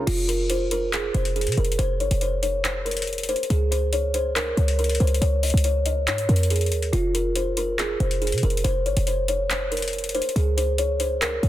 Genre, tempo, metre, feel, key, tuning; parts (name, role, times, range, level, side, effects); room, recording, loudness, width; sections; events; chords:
hip hop, trap; 140 BPM; 4/4; half-time; F minor; A4 = 440 Hz
kalimba; melody; 0.0-11.5 s; F4 to Eb5; -25 LUFS; equal; low-pass filter, tape echo
short 808-style bass; bass; 0.1-11.5 s; F1 to C3; -24 LUFS; equal
trap drum kit; drums; 0.1-11.5 s; crash cymbal, handclaps, hi-hat; -28 LUFS; left 2 dB
light reverb; dense, heavily limited modern master, low-pass filter; -21 LUFS; side -13 dB against mid
0.1-11.5 A section
0.1 F5; 3.5 Db; 6.9 F5; 10.4 N.C.